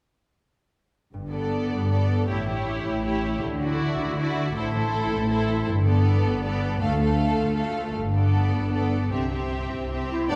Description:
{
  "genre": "cinematic",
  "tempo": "105 BPM (dotted quarters)",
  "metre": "6/8",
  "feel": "straight",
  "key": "G major",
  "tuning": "A4 = 440 Hz",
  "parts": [
    { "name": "concert harp", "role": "arpeggios", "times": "1.1-10.4 s", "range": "G2 to A4", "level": "-34 LUFS", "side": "equal", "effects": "none" },
    { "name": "warm symphonic cello section", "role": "bass", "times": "1.1-10.4 s", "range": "D2 to D3", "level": "-30 LUFS", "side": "equal", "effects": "none" },
    { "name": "warm symphonic double bass section", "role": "bass", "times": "1.1-10.4 s", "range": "G1 to D2", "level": "-30 LUFS", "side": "equal", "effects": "none" },
    { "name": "rich studio violin section", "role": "melody", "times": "1.3-10.4 s", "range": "C5 to G5", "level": "-38 LUFS", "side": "equal", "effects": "none" },
    { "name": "warm symphonic violin section", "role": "second line", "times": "1.3-10.4 s", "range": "F#4 to D5", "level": "-34 LUFS", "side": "equal", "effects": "none" },
    { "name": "rich symphonic viola section", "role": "accompaniment", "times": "1.3-10.4 s", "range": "A3 to E4", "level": "-32 LUFS", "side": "equal", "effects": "none" },
    { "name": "warm clarinet", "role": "second line", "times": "10.1-10.4 s", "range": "D4 to E4", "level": "-28 LUFS", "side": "equal", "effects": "none" }
  ],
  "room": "wet scoring stage reverb, RT60 2.0 s",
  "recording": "recorded in a church or concert hall",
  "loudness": "-25 LUFS",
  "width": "mono",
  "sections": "1.1-10.3 A section",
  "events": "build-up 1.1-10.3",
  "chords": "1.1 Gadd9; 2.3 A7; 3.4 Dadd9; 4.6 Am; 5.7 Gadd9; 6.8 Dm; 8.0 Gadd9; 9.1 C",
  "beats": "| 1.14 1.72 | 2.29 2.86 | 3.42 4.00 | 4.56 5.12 | 5.68 6.25 | 6.81 7.38 | 7.95 8.53 | 9.12 9.71 | 10.31"
}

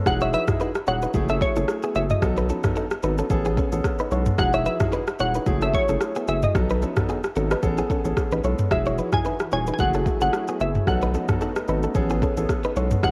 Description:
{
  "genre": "afrobeats",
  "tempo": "111 BPM",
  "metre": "4/4",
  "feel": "swing 55% on 16ths",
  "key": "E major",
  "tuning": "A4 = 440 Hz",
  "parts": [
    { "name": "warm concert grand piano", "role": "accompaniment", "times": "0.0-13.1 s", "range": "F#3 to A4", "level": "-31 LUFS", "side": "equal", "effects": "cassette tape" },
    { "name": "lush unison pad", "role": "sustained chords", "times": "0.0-0.1, 8.7-13.1 s", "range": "E3 to G#4", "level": "-37 LUFS", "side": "equal", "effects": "none" },
    { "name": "glassy wavetable pluck", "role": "melody", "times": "0.1-13.1 s", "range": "C#5 to G#5", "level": "-29 LUFS", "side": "equal", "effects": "chorus, cassette tape, analog delay" },
    { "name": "saturated sub bass", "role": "bass", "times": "0.1-13.1 s", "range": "D#1 to B1", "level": "-28 LUFS", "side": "equal", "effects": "none" },
    { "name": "afro-pop drum kit", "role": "drums", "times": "0.1-13.1 s", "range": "kick drum, rim click, shaker, toms", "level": "-27 LUFS", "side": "equal", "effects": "cassette tape" },
    { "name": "congas and bongos", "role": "percussion", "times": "0.1-13.1 s", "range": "none", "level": "-38 LUFS", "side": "equal", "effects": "none" },
    { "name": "direct-recorded clean electric guitar", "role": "riff", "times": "0.2-12.9 s", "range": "B3 to C#5", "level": "-32 LUFS", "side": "equal", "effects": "spring reverb, cassette tape" }
  ],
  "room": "light reverb, digital ambience",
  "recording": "home recording on cassette",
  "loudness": "-23 LUFS",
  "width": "mono",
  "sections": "0.1-13.1 A section",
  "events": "none",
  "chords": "0.1 Emaj9; 1.1 F#m9; 2.2 B7; 3.3 Amaj9; 4.4 Emaj9; 5.5 F#m9; 6.5 B7; 7.6 Amaj9; 8.7 Emaj9; 9.8 F#m9; 10.9 B7; 12.0 Amaj9",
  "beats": "| 0.06 0.60 1.14 1.68 | 2.22 2.76 3.30 3.85 | 4.38 4.93 5.47 6.01 | 6.55 7.09 7.63 8.17 | 8.71 9.25 9.79 10.33 | 10.87 11.41 11.95 12.49 | 13.03"
}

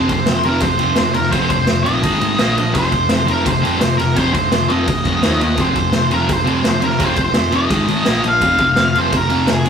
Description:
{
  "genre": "garage rock duo or trio",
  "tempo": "170 BPM",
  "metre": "4/4",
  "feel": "straight",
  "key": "F minor",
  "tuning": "A4 = 440 Hz",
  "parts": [
    { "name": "octave-fuzz lead guitar", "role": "melody", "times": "0.0-9.7 s", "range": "Ab4 to F5", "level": "-18 LUFS", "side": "equal", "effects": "distortion" },
    { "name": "thick fuzz guitar", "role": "riff", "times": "0.0-9.7 s", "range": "F2 to Eb4", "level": "-18 LUFS", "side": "equal", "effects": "distortion" },
    { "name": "hollow-body short-scale picked electric bass", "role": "bass", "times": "0.0-9.7 s", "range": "F1 to F2", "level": "-24 LUFS", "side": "equal", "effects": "overdrive" },
    { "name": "raw garage drum kit", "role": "drums", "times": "0.1-9.7 s", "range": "kick drum, ride cymbal, snare drum", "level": "-19 LUFS", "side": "equal", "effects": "none" }
  ],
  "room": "moderate studio reverb, RT60 0.6 s",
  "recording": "rough rehearsal-room recording, tube saturation",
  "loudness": "-13 LUFS",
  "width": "side -7 dB against mid",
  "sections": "0.0-9.7 A section",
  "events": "none",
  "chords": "0.0 F5; 2.0 Ab5; 2.4 Bb5; 2.8 F5; 5.2 Eb5; 5.6 F5; 7.7 Ab5; 8.1 Bb5; 8.4 F5",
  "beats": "0.28 0.63 0.98 | 1.34 1.69 2.04 2.40 | 2.75 3.10 3.46 3.81 | 4.17 4.52 4.88 5.23 | 5.58 5.94 6.29 6.65 | 7.00 7.35 7.71 8.06 | 8.42 8.77 9.12 9.48"
}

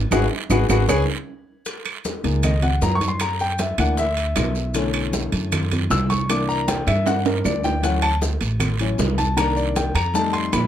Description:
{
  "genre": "Afro-Cuban jazz",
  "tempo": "156 BPM",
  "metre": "4/4",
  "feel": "straight",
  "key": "unclear",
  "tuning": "A4 = 440 Hz",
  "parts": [
    { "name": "upright bass", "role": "bass", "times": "0.0-10.7 s", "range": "G#1 to G2", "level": "-22 LUFS", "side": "right 1 dB", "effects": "none" },
    { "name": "warm grand piano", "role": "accompaniment", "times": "0.1-10.7 s", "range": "D3 to E6", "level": "-22 LUFS", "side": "left 3 dB", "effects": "none" },
    { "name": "bongos", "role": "percussion", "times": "0.1-10.7 s", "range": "none", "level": "-31 LUFS", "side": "left 4 dB", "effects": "none" },
    { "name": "claves", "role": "percussion", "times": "0.1-10.7 s", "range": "none", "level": "-31 LUFS", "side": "right 8 dB", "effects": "none" },
    { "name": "congas", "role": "percussion", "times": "0.1-10.7 s", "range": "none", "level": "-29 LUFS", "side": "equal", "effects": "none" },
    { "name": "guiro", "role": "percussion", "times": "0.1-10.7 s", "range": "none", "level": "-34 LUFS", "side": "right 8 dB", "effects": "none" },
    { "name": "maracas", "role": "percussion", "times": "0.1-10.7 s", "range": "none", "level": "-35 LUFS", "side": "left 4 dB", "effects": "none" },
    { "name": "timbales", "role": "percussion", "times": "0.1-10.7 s", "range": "none", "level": "-29 LUFS", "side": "right 9 dB", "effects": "none" }
  ],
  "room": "little or no reverb",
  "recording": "close, detailed microphones",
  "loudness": "-18 LUFS",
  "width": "side -10 dB against mid",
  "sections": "0.0-1.7 A section; 1.7-10.7 A section",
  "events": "grand piano solo 0.0-10.7; band accent 0.1-1.7; drum fill 0.9-1.7, 6.7-7.8",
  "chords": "0.1 G#m7; 0.9 C#5; 1.7 F#69; 3.2 F#aug7; 4.8 Bm11; 6.3 C9; 7.8 Dmaj9; 9.4 Cm9; 10.1 F9",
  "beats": "| 0.12 0.51 0.89 1.28 | 1.67 2.05 2.44 2.82 | 3.21 3.59 3.98 4.37 | 4.75 5.14 5.52 5.91 | 6.29 6.68 7.06 7.45 | 7.83 8.22 8.61 8.99 | 9.38 9.76 10.15 10.53"
}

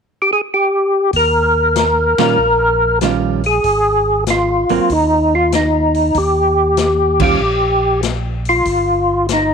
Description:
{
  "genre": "soul jazz organ trio",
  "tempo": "96 BPM",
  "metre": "4/4",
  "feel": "swing 68% on 8ths",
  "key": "Eb mixolydian",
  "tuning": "A4 = 440 Hz",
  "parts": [
    { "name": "percussive tonewheel organ", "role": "melody", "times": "0.2-9.5 s", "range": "Eb4 to Bb4", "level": "-13 LUFS", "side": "equal", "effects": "slow rotary speaker, chorus vibrato" },
    { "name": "tonewheel organ", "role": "bass", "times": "1.1-9.5 s", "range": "G1 to Bb2", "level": "-20 LUFS", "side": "equal", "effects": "slow rotary speaker" },
    { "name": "swinging big-band drum kit", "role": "drums", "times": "1.1-9.5 s", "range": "crash cymbal, hi-hat, kick drum, ride cymbal, snare drum", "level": "-23 LUFS", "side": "left 6 dB", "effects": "none" },
    { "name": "vintage hollow-body jazz guitar", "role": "accompaniment", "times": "2.2-7.4 s", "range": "Eb3 to F4", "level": "-18 LUFS", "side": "right 12 dB", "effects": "none" }
  ],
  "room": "light reverb, small room ambience",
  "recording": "1960s-style stereo with parts hard left and right",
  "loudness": "-12 LUFS",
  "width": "side -6 dB against mid",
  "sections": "0.0-1.1 A section; 1.1-9.5 B section",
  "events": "band accent 2.1-2.4, 7.1-7.4",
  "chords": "0.0 N.C.; 1.1 Eb9; 3.6 Ab5; 6.2 Ebadd9",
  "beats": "0.51 | 1.14 1.76 2.39 3.02 | 3.64 4.27 4.90 5.53 | 6.15 6.78 7.41 8.04 | 8.66 9.29"
}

